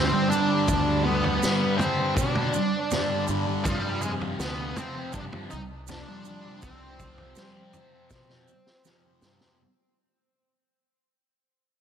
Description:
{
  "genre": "psychedelic rock",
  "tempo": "81 BPM",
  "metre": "4/4",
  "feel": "straight",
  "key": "unclear",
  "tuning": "A4 = 439 Hz",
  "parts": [
    { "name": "octave-fuzz lead guitar", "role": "melody", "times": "0.0-8.8 s", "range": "F3 to Eb4", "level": "-28 LUFS", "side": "equal", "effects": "wah, distortion, diffuse ambient delay" },
    { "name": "thick fuzz guitar", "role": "riff", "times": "0.0-9.6 s", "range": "F2 to G3", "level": "-29 LUFS", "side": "left 1 dB", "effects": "distortion, phaser" },
    { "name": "fuzz fingered electric bass", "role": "bass", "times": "0.0-9.4 s", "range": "C2 to G3", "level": "-30 LUFS", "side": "right 2 dB", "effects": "overdrive" },
    { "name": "maracas", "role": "percussion", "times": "0.3-9.4 s", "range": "none", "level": "-40 LUFS", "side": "right 15 dB", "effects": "none" },
    { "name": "vintage drum kit", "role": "drums", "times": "0.7-9.6 s", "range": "kick drum, snare drum, toms", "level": "-32 LUFS", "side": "equal", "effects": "none" }
  ],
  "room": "moderate plate reverb, RT60 2.2 s",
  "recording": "dreamy mix soaked in reverb",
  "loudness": "-23 LUFS",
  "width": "side -8 dB against mid",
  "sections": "0.0-9.6 A section",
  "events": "fade-out 0.0-9.6; drum fill 8.1-9.6",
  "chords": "0.0 G5; 3.7 Fsus2",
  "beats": "| 0.69 1.43 2.17 2.91 | 3.65 4.40 5.14 5.88 | 6.62 7.36 8.10 8.85"
}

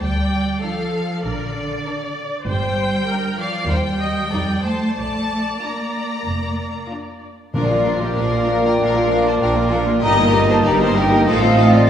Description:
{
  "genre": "quick classical-period movement for symphony orchestra",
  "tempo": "96 BPM",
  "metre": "4/4",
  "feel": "uneven beats, rubato",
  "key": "Bb major",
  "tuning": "A4 = 439 Hz",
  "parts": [
    { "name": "rich studio violin section", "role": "melody", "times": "0.0-11.8 s", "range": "F4 to Bb5", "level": "-27 LUFS", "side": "left 3 dB", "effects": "none" },
    { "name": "rich studio viola section", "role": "accompaniment", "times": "0.0-11.9 s", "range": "F3 to Eb5", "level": "-24 LUFS", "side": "right 1 dB", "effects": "none" },
    { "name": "clear studio cello section", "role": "bass", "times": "0.0-11.8 s", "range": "G2 to Bb3", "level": "-23 LUFS", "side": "right 1 dB", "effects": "none" },
    { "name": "rich studio double bass section", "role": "bass", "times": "0.0-11.8 s", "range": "F1 to F2", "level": "-25 LUFS", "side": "right 1 dB", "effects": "none" },
    { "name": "rich studio violin section", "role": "second line", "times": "0.6-11.9 s", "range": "D4 to C5", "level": "-29 LUFS", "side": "left 2 dB", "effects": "none" },
    { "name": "large flute ensemble", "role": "second line", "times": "7.5-11.9 s", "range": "D5 to Bb5", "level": "-20 LUFS", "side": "equal", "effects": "none" },
    { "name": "mellow French horn section", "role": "sustained chords", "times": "7.5-11.9 s", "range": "Bb3 to F4", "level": "-25 LUFS", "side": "left 4 dB", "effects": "none" },
    { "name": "mellow trumpet section", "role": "stabs", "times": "7.5-11.9 s", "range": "D5 to Eb5", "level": "-23 LUFS", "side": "right 1 dB", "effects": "none" },
    { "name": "timpani", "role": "percussion", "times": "7.5-8.5 s", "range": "Bb2", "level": "-26 LUFS", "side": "equal", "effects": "none" },
    { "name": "mellow clarinet", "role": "second line", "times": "7.6-11.9 s", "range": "Eb4 to F4", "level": "-27 LUFS", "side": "right 1 dB", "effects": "none" },
    { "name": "warm oboe", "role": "second line", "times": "7.6-11.9 s", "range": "D5 to Eb5", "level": "-29 LUFS", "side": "left 1 dB", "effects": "none" },
    { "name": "mellow bassoon", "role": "accompaniment", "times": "7.6-11.9 s", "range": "Bb3 to C4", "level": "-24 LUFS", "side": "left 4 dB", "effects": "none" }
  ],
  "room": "wet scoring stage reverb, RT60 1.8 s",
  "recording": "heard from further back in the room",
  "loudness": "-16 LUFS",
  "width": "side -9 dB against mid",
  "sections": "0.0-7.6 A section; 7.6-11.9 B section",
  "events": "none",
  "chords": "0.0 Dm; 1.3 Bb; 2.5 Gm; 3.7 Cm/Eb; 4.3 F7; 5.0 Bb; 10.0 Eb/G; 11.3 F7/A",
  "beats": "| 0.02 0.64 1.25 1.86 | 2.47 3.08 3.70 4.32 | 4.97 5.62 6.26 6.91 | 7.55 8.19 8.81 9.44 | 10.04 10.65 11.27 11.88"
}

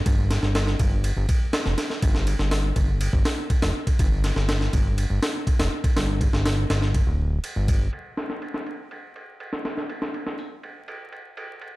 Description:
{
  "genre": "breakbeat, breaks",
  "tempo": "122 BPM",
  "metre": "4/4",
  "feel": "straight",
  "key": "unclear",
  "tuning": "A4 = 445 Hz",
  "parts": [
    { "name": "fat analog bass", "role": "bass", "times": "0.1-7.9 s", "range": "D1 to G1", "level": "-23 LUFS", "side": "equal", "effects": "none" },
    { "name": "breakbeat sampler-style drum kit", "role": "drums", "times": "0.1-11.7 s", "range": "hi-hat, kick drum, ride cymbal, snare drum", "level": "-24 LUFS", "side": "equal", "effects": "low-pass filter on cymbals, low-pass filter on kick, low-pass filter on snare, low-pass filter on hats, low-pass filter on room" }
  ],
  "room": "little or no reverb",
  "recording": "vinyl crackle",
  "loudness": "-21 LUFS",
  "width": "side -19 dB against mid",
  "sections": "0.0-7.9 A section; 7.9-11.8 B section",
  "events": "none",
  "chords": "none",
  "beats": "| 0.06 0.55 1.04 1.54 | 2.03 2.52 3.01 3.50 | 4.00 4.49 4.98 5.47 | 5.96 6.45 6.95 7.44 | 7.93 8.42 8.91 9.40 | 9.90 10.39 10.88 11.37"
}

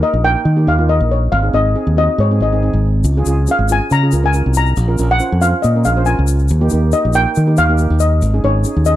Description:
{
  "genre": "calypso",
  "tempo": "139 BPM",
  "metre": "4/4",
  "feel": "swing 53% on 16ths",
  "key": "unclear",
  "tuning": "A4 = 440 Hz",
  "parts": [
    { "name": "steel pan", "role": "melody", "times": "0.0-9.0 s", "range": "Db5 to Bb5", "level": "-17 LUFS", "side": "left 2 dB", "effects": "none" },
    { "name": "steel pan", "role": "accompaniment", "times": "0.0-9.0 s", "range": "Bb3 to C5", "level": "-21 LUFS", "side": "right 3 dB", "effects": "none" },
    { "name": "modern bright fingered electric bass", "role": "bass", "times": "0.1-9.0 s", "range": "Ab1 to Eb3", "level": "-14 LUFS", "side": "equal", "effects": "none" },
    { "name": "egg shaker", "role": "percussion", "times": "3.0-9.0 s", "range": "none", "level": "-29 LUFS", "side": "left 16 dB", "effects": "none" }
  ],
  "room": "studio ambience",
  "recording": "dry, close 1970s-style studio recording",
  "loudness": "-12 LUFS",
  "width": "side -13 dB against mid",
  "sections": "0.0-9.0 A section",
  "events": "none",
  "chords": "0.0 Eb; 1.3 Ab; 3.0 Dbmaj7; 4.8 Bbmadd9; 6.5 Eb; 8.2 Absus4",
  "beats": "0.03 0.46 0.89 | 1.32 1.75 2.18 2.62 | 3.05 3.48 3.91 4.34 | 4.77 5.20 5.63 6.06 | 6.50 6.93 7.36 7.79 | 8.22 8.65"
}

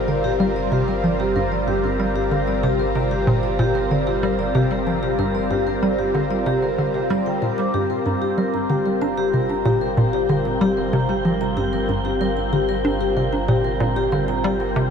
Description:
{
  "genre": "ambient, sequencer-driven space music",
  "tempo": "94 BPM",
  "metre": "4/4",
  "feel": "straight",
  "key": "G minor",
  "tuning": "A4 = 439 Hz",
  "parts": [
    { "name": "lush unison pad", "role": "sustained chords", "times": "0.0-14.9 s", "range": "G3 to Bb4", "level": "-23 LUFS", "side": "equal", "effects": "chorus, phaser" },
    { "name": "vibraphone with medium mallets", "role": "arpeggios", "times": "0.0-14.9 s", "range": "G4 to D6", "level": "-24 LUFS", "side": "moving between left 7 dB and right 2 dB", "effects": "auto-pan, tape echo" },
    { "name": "hollow square pluck", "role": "riff", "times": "0.0-14.9 s", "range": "G2 to D4", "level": "-23 LUFS", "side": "equal", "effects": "chorus, tape echo" },
    { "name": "round analog bass", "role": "bass", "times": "0.0-14.9 s", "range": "G1", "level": "-30 LUFS", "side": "equal", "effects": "none" },
    { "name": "wind-like tuned noise texture", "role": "texture", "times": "0.0-14.9 s", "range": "G5 to Bb5", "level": "-35 LUFS", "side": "right 1 dB", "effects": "built-in reverb" }
  ],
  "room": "wet huge ambient reverb, RT60 7.8 s",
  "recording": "none",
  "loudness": "-18 LUFS",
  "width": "side -7 dB against mid",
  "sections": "0.0-14.9 A section",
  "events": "fade-in on synth texture 0.0-14.9; filter sweep on synth arpeggio sound 0.0-14.9",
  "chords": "0.0 Gm",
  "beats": "| 0.08 0.72 1.36 2.00 | 2.63 3.27 3.91 4.55 | 5.19 5.83 6.46 7.10 | 7.74 8.38 9.02 9.66 | 10.29 10.93 11.57 12.21 | 12.85 13.49 14.12 14.76"
}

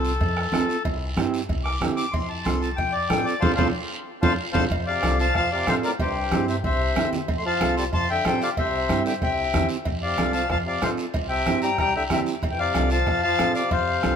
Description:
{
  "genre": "latin, cumbia",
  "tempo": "187 BPM",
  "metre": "4/4",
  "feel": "straight",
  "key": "F major",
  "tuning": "A4 = 438 Hz",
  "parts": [
    { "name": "accordion", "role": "melody", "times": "0.0-14.2 s", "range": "G4 to D6", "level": "-25 LUFS", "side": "left 4 dB", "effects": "none" },
    { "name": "mellow electric guitar", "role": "accompaniment", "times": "0.0-14.2 s", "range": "C4 to A4", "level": "-29 LUFS", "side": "right 6 dB", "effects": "none" },
    { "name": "upright bass", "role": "bass", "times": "0.0-14.2 s", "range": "C2 to A2", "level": "-29 LUFS", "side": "equal", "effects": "none" },
    { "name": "guiro", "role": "percussion", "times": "0.0-14.2 s", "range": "none", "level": "-37 LUFS", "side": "right 3 dB", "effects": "none" },
    { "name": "bombo", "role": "percussion", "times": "0.2-14.2 s", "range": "none", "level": "-30 LUFS", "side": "right 1 dB", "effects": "none" },
    { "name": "congas", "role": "percussion", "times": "0.2-14.1 s", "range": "none", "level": "-32 LUFS", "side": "equal", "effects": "none" },
    { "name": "cowbell and timbales", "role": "percussion", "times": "0.2-14.2 s", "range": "none", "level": "-35 LUFS", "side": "right 4 dB", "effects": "none" },
    { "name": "growling trombone", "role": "second line", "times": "4.9-14.2 s", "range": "G2 to A3", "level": "-31 LUFS", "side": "right 3 dB", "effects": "none" }
  ],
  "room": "moderate plate reverb, RT60 2.8 s",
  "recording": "minimal, uncompressed stereo recording",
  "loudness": "-21 LUFS",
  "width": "side -7 dB against mid",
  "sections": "0.0-4.7 A section; 4.7-14.2 B section",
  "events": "accordion solo 0.0-4.7; band accent 3.4-4.7; drum fill 4.2-4.7",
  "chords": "0.0 F; 0.9 C; 2.1 F; 6.0 C; 7.3 F; 8.6 C; 9.9 F; 11.1 C; 12.4 F",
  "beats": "0.22 0.54 | 0.86 1.18 1.50 1.82 | 2.15 2.47 2.79 3.11 | 3.43 3.75 4.07 4.39 | 4.72 5.04 5.36 5.68 | 6.00 6.32 6.64 6.97 | 7.29 7.61 7.93 8.25 | 8.57 8.89 9.21 9.54 | 9.86 10.18 10.50 10.82 | 11.14 11.46 11.79 12.11 | 12.43 12.75 13.07 13.39 | 13.72 14.04"
}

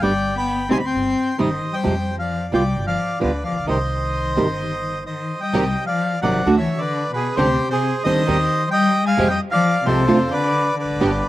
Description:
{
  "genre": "tango",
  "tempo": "131 BPM",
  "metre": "4/4",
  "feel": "rubato",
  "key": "C harmonic minor",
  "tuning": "A4 = 439 Hz",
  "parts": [
    { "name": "bandoneon", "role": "melody", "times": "0.0-11.3 s", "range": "G4 to C6", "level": "-22 LUFS", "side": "equal", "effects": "slapback echo" },
    { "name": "warm cello", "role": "second line", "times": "0.0-11.3 s", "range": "B2 to C4", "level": "-23 LUFS", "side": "left 3 dB", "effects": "none" },
    { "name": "nylon-string guitar", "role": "accompaniment", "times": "0.0-11.1 s", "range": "C3 to G4", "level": "-20 LUFS", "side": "right 2 dB", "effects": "none" },
    { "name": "upright bass", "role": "bass", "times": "0.0-11.2 s", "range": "E1 to F2", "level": "-28 LUFS", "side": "right 1 dB", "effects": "none" },
    { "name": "rich symphonic string section", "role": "stabs", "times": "5.5-11.2 s", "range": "Ab3 to G4", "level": "-30 LUFS", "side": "right 3 dB", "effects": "slapback echo" }
  ],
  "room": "little or no reverb",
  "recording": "recorded outdoors, with no room sound",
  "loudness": "-17 LUFS",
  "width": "side -15 dB against mid",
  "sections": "0.0-5.5 A section; 5.5-11.3 A section",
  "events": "none",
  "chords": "0.0 G; 0.9 Cm/G; 1.8 Fsus2; 2.8 G7; 3.7 Cm; 6.5 D; 7.4 Gsus4/D; 8.3 Cm/Eb; 9.2 Fmadd9; 10.1 Dm7/F",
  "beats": "| 0.02 0.48 0.93 1.39 | 1.85 2.30 2.76 3.22 | 3.68 4.14 4.60 5.07 | 5.54 6.00 6.46 6.92 | 7.37 7.83 8.28 8.73 | 9.18 9.63 10.09 10.55 | 11.01"
}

